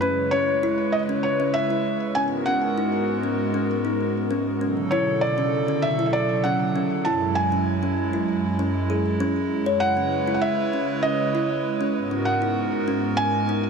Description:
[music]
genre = IDM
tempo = 98 BPM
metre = 4/4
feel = straight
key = C# minor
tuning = A4 = 443 Hz
[part]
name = felt-muted upright piano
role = melody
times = 0.0-13.7 s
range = B4 to A5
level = -25 LUFS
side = equal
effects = shimmer reverb, ping-pong delay
[part]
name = hollow soft pad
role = sustained chords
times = 0.0-13.7 s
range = F#2 to C#5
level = -25 LUFS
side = right 2 dB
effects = chorus, shimmer reverb
[part]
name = kalimba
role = arpeggios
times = 0.0-13.6 s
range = C#4 to C#5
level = -26 LUFS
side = left 2 dB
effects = shimmer reverb, ping-pong delay
[sound]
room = moderate echo chamber reverb, RT60 1.4 s, small room ambience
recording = none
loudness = -21 LUFS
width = side -5 dB against mid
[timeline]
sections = 0.0-13.7 A section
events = none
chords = 0.0 C#m7; 2.2 G#m9; 4.6 Bm9; 7.1 F#sus2; 9.8 C#m9; 12.0 G#m9

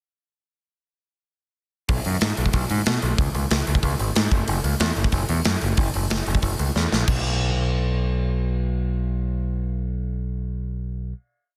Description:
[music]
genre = punk rock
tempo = 185 BPM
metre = 4/4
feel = straight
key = unclear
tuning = A4 = 440 Hz
[part]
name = growling picked electric bass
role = bass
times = 1.9-11.1 s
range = F#1 to B2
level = -26 LUFS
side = equal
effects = overdrive
[part]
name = big rock drum kit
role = drums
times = 1.9-7.2 s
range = crash cymbal, hi-hat, kick drum, snare drum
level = -25 LUFS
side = equal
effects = none
[sound]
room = little or no reverb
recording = dense, heavily limited modern master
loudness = -23 LUFS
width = mono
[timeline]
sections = 1.9-7.1 verse; 7.1-9.7 final note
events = drum fill 6.8-7.1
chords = none

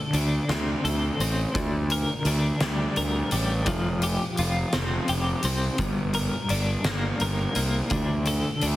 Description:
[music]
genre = quiet-loud alternative rock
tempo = 56 BPM (dotted quarters)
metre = 6/8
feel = straight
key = F major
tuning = A4 = 441 Hz
[part]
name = twelve-string electric guitar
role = arpeggios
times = 0.0-8.8 s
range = G2 to Bb4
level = -28 LUFS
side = left 1 dB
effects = tremolo
[part]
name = fuzz fingered electric bass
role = bass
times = 0.1-8.8 s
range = F1 to D2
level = -26 LUFS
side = equal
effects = overdrive
[part]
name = oversized low-tuned drum kit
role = drums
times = 0.1-8.8 s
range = hi-hat, kick drum, snare drum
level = -30 LUFS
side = equal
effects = none
[sound]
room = small room ambience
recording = heavily compressed radio sound, multiband compression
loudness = -23 LUFS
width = side -15 dB against mid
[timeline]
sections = 0.0-8.8 A section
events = none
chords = 0.0 D5; 1.6 Bb6/D; 3.7 Fsus2; 5.8 Gm; 7.9 D5

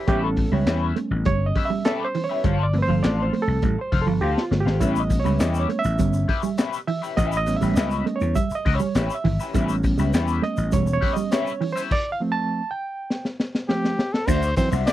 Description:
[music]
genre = funk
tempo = 101 BPM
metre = 4/4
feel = straight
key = A mixolydian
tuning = A4 = 440 Hz
[part]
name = clean electric guitar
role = accompaniment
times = 0.0-14.9 s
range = C#4 to F5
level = -28 LUFS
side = left 8 dB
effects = wah, lush chorus
[part]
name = barky reed electric piano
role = stabs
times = 0.0-14.8 s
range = D3 to A5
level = -26 LUFS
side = right 3 dB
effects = overdrive, fast tremolo
[part]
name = mellow electric guitar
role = riff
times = 0.1-14.8 s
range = E3 to D4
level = -28 LUFS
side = right 6 dB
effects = spring reverb
[part]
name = vintage slap bass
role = bass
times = 0.1-14.8 s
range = E1 to E2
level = -23 LUFS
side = left 1 dB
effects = none
[part]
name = crunchy breakbeat drum kit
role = drums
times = 0.1-14.9 s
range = crash cymbal, handclaps, hi-hat, kick drum, snare drum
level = -24 LUFS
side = left 1 dB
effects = none
[part]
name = tube shaker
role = percussion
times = 4.8-14.9 s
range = none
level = -44 LUFS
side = left 5 dB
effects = none
[part]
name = clear trumpet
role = melody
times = 13.7-14.9 s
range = G4 to D5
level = -25 LUFS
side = left 1 dB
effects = none
[sound]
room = light reverb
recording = dry, close 1970s-style studio recording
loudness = -20 LUFS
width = side -14 dB against mid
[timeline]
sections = 0.0-14.3 A section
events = reed electric piano solo 0.0-14.3; drum fill 4.2-4.8, 13.1-14.3; stop 11.9-14.3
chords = 0.0 A9; 2.4 G9sus4; 4.8 A9; 11.9 G9sus4; 14.3 D9

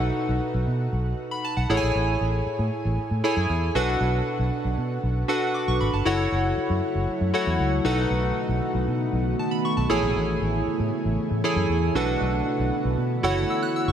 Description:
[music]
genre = pop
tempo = 117 BPM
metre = 4/4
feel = straight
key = unclear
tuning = A4 = 440 Hz
[part]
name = warm analog keys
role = accompaniment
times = 0.0-13.9 s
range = A2 to F#6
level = -24 LUFS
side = equal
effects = chorus, shimmer reverb
[part]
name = vintage muted fingered electric bass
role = bass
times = 0.0-13.9 s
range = F#1 to B2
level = -25 LUFS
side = equal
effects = none
[part]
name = glassy FM pad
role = sustained chords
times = 6.6-13.9 s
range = C#3 to F#4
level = -29 LUFS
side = equal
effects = ensemble chorus, built-in reverb, shimmer reverb
[sound]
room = moderate lush hall reverb, RT60 2.9 s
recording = none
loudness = -22 LUFS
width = side -9 dB against mid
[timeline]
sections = 0.0-13.9 A section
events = none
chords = 0.0 B7; 1.7 Amaj7; 3.8 Bm7; 6.1 F#m7; 7.9 B7; 9.9 Amaj7; 12.0 Bm7; 13.2 F#m7

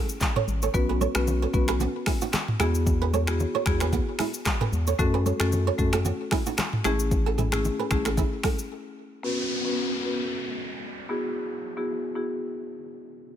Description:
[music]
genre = afrobeats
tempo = 113 BPM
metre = 4/4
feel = swing 55% on 16ths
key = E major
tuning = A4 = 436 Hz
[part]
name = flamenco guitar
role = riff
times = 0.0-8.6 s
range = B3 to C#5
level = -30 LUFS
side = right 8 dB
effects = ping-pong delay
[part]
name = afro-pop drum kit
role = drums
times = 0.1-8.7 s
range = finger snaps, handclaps, hi-hat, kick drum, rim click, shaker, toms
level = -27 LUFS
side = equal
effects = none
[part]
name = congas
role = percussion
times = 0.2-8.6 s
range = none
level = -34 LUFS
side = left 3 dB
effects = none
[part]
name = round analog bass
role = bass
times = 0.5-8.2 s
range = A1 to F#2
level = -26 LUFS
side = equal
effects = none
[part]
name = marimba with medium mallets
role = accompaniment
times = 0.7-12.4 s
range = A3 to B4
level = -29 LUFS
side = left 2 dB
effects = low-pass filter
[part]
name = downlifter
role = sound effects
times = 9.2-13.4 s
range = none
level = -33 LUFS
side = left 1 dB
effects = none
[sound]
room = little or no reverb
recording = none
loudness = -23 LUFS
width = side -10 dB against mid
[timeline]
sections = 0.0-9.2 A section; 9.2-13.4 B section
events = break 8.7-9.2; filter sweep on marimba 9.2-13.4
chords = 0.0 A; 0.7 Bsus2; 2.6 Eadd9; 5.0 F#m; 6.8 Amaj7; 9.2 Bsus2; 11.1 Eadd9

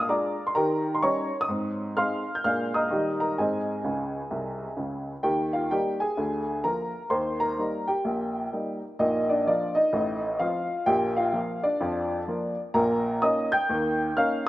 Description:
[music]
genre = jazz, stride piano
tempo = 128 BPM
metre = 4/4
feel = swing 63% on 8ths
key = Ab major, Eb major from 5.2 s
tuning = A4 = 440 Hz
[part]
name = clear upright piano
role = solo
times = 0.0-14.5 s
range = A1 to G6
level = -24 LUFS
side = equal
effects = none
[sound]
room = light reverb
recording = rough home demo mix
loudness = -24 LUFS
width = side -16 dB against mid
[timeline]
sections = 0.0-5.2 A section; 5.2-14.5 B section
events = upright piano fill 3.8-5.2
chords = 0.0 Bb7; 0.6 Eb7; 1.5 Ab; 2.4 Bb7; 2.9 Eb; 3.4 Ab; 5.2 Eb; 6.2 Bb7/D; 7.1 Eb; 9.0 Bb; 9.9 F7/A; 10.9 Bb; 12.8 Eb7/Bb

